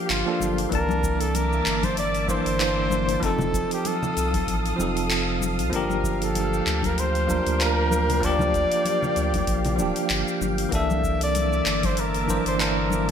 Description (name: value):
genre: sunset chillout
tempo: 96 BPM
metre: 4/4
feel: swing 56% on 16ths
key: G minor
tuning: A4 = 439 Hz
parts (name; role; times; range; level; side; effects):
- bell-like tine electric piano; accompaniment; 0.0-13.1 s; E3 to A5; -26 LUFS; moving between left 4 dB and right 4 dB; fast stereo tremolo, auto-pan, digital delay
- soft string machine; sustained chords; 0.0-13.1 s; Bb3 to Eb6; -31 LUFS; equal; ensemble chorus
- clear flugelhorn; melody; 0.1-13.1 s; F4 to E5; -27 LUFS; left 1 dB; ping-pong delay
- warm sub bass; bass; 0.1-13.1 s; D1 to D2; -28 LUFS; equal; tube saturation
- deep house drum kit; drums; 0.1-13.1 s; handclaps, hi-hat, shaker; -30 LUFS; left 1 dB; gated reverb
- congas; percussion; 0.4-13.1 s; none; -32 LUFS; left 3 dB; none
- electronic kick drum; drums; 0.7-12.4 s; none; -31 LUFS; equal; overdrive
room: moderate plate reverb, RT60 1.4 s, digital ambience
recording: bright 1980s-style digital production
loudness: -21 LUFS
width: side -8 dB against mid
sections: 0.0-13.1 A section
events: none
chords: 0.0 Gm7; 0.7 C13; 3.2 F7; 5.7 Gm7; 10.7 C13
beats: 0.10 | 0.72 1.35 1.98 2.60 | 3.23 3.85 4.47 5.10 | 5.72 6.35 6.97 7.60 | 8.22 8.85 9.47 10.10 | 10.72 11.35 11.97 12.60